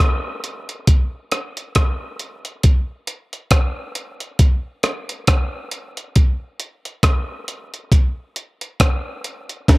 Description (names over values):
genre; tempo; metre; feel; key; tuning
reggae; 68 BPM; 4/4; swing 58% on 16ths; none; none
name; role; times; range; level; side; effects
breakbeat sampler-style drum kit; drums; 0.0-9.8 s; hi-hat, kick drum, rim click, snare drum; -16 LUFS; equal; none
room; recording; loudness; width
light reverb; none; -17 LUFS; side -22 dB against mid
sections
0.0-9.8 A section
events
none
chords
none